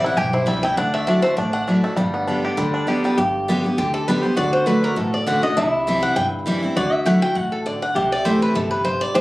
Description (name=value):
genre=bluegrass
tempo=200 BPM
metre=4/4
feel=swing 54% on 8ths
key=G major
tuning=A4 = 439 Hz
part: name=bluegrass banjo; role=melody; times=0.0-3.2 s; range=G3 to G4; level=-24 LUFS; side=equal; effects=none
part: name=picked swing-style acoustic guitar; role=melody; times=0.0-1.6, 3.8-9.2 s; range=G4 to G5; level=-22 LUFS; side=equal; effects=none
part: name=picked steel-string acoustic guitar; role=accompaniment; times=0.0-9.2 s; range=G2 to G4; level=-21 LUFS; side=equal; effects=none
part: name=upright bass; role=bass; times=0.0-9.2 s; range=G1 to D2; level=-30 LUFS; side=equal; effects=none
part: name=lap resonator guitar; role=second line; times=3.2-9.2 s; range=E4 to A4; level=-24 LUFS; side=equal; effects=none
room=moderate studio reverb, RT60 0.8 s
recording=recorded on a phone in the room, club reverb, compression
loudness=-17 LUFS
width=side -18 dB against mid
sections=0.0-3.2 A section; 3.2-9.2 B section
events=steel-string acoustic guitar solo 3.2-9.2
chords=0.0 C; 0.8 Dadd9; 2.0 G; 4.4 D; 5.6 C; 6.8 Dadd9; 8.0 C6